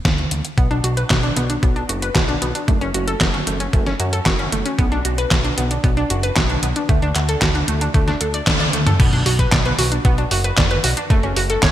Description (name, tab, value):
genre	italo disco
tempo	114 BPM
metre	4/4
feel	straight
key	B minor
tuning	A4 = 440 Hz
part	fat analog bass	bass	0.1-11.7 s	F#1 to F#2	-22 LUFS	equal	none
part	detuned 8-bit digital drum machine	drums	0.1-11.7 s	crash cymbal, handclaps, hi-hat, snare drum, toms	-21 LUFS	equal	overdrive, gated reverb
part	electronic kick drum	drums	0.1-11.7 s	none	-18 LUFS	equal	overdrive
part	analog pluck	arpeggios	0.6-11.7 s	A3 to D5	-22 LUFS	right 1 dB	chorus, digital delay
room	moderate lush hall reverb, RT60 2.3 s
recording	bright 1980s-style digital production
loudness	-16 LUFS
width	side -12 dB against mid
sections	0.0-9.0 A section; 9.0-11.7 B section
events	drum fill 8.5-9.0; band accent 8.5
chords	0.0 N.C.; 0.6 Bm; 2.7 F#m; 4.8 Bm; 6.9 D; 9.0 Bm; 11.1 F#m